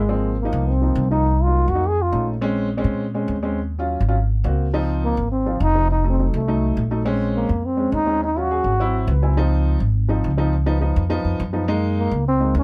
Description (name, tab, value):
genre	jazz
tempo	207 BPM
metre	4/4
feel	straight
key	Db major from 4.7 s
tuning	A4 = 441 Hz
part	breathy trombone	melody	0.0-2.3, 5.0-9.2, 12.0-12.6 s	Ab3 to Ab4	-24 LUFS	equal	none
part	upright bass	bass	0.0-12.6 s	F1 to Bb2	-23 LUFS	equal	none
part	dark upright piano	accompaniment	0.1-12.6 s	F3 to Ab5	-26 LUFS	equal	none
room	light reverb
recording	none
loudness	-20 LUFS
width	mono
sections	0.0-4.7 A section; 4.7-12.6 B section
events	upright piano fill 8.9-9.4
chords	0.1 Ab69; 1.3 Cm7b5; 1.8 Faug7; 2.4 Bbm9; 3.6 Ebm7; 4.2 Ab7; 4.7 Dbmaj9; 5.9 F7b9; 7.1 Bbm9; 8.2 Ebm9; 8.8 Abaug7; 9.4 Dbmaj9; 10.5 Db7; 11.7 Gb69